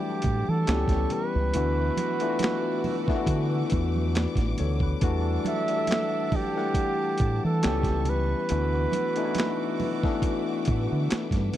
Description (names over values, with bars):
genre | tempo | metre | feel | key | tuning
R&B, neo-soul | 69 BPM | 4/4 | swing 54% on 16ths | unclear | A4 = 440 Hz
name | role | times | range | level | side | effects
warm flugelhorn | melody | 0.0-10.7 s | G4 to E5 | -29 LUFS | right 3 dB | none
barky tine electric piano | accompaniment | 0.0-11.6 s | E3 to F#5 | -29 LUFS | left 7 dB | overdrive
warm studio string section | sustained chords | 0.0-11.6 s | A4 to D6 | -40 LUFS | left 1 dB | none
warm horn section | stabs | 0.0-11.5 s | B2 to A4 | -36 LUFS | right 16 dB | none
boom bap sampler-style drum kit | drums | 0.2-11.6 s | handclaps, hi-hat, kick drum, snare drum | -28 LUFS | right 1 dB | none
congas | percussion | 0.2-11.6 s | none | -36 LUFS | right 7 dB | none
deep dub fingered electric bass | bass | 0.3-11.5 s | A1 to E3 | -26 LUFS | right 1 dB | none
room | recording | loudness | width
little or no reverb | dry, close 1970s-style studio recording | -23 LUFS | side -12 dB against mid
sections
0.0-11.6 A section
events
none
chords
0.0 Em11; 0.7 C#m7b5; 1.5 D69; 5.0 Em11; 7.6 C#m7b5; 8.5 D69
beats
0.67 | 1.54 2.41 3.28 4.15 | 5.02 5.89 6.76 7.62 | 8.49 9.36 10.23 11.10